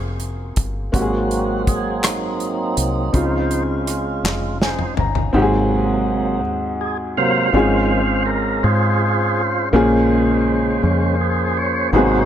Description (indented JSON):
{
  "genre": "slow gospel",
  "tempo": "55 BPM (dotted quarters)",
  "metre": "6/8",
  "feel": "straight",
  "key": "Db major",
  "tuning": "A4 = 439 Hz",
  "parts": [
    { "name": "warm grand piano", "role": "accompaniment", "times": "0.0-12.3 s", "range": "Ab2 to Bb5", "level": "-20 LUFS", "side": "left 1 dB", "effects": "none" },
    { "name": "deep dub fingered electric bass", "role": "bass", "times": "0.0-12.3 s", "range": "F1 to Ab2", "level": "-22 LUFS", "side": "equal", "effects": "none" },
    { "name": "natural country drum kit", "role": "drums", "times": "0.2-5.3 s", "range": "hi-hat, kick drum, rim click, snare drum, toms", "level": "-22 LUFS", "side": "equal", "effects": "none" },
    { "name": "tonewheel organ", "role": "sustained chords", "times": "0.9-12.3 s", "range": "C3 to F5", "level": "-21 LUFS", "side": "right 2 dB", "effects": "slow rotary speaker, overdrive" },
    { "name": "group handclap", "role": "percussion", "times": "2.0-4.6 s", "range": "none", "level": "-26 LUFS", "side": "left 4 dB", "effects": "none" }
  ],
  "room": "light reverb, small room ambience",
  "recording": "none",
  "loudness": "-16 LUFS",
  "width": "side -10 dB against mid",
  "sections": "0.0-5.3 A section; 5.3-12.3 B section",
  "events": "tonewheel organ solo 0.0-5.3, 5.3-12.3; drum fill 4.2-5.3; grand piano fill 4.2-5.3",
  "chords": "0.0 Gbmaj9#11 (rootless); 0.9 Ab9; 3.1 Dbmaj9; 5.3 Ab7; 7.5 Dbmaj7/Ab; 9.7 Bbm7"
}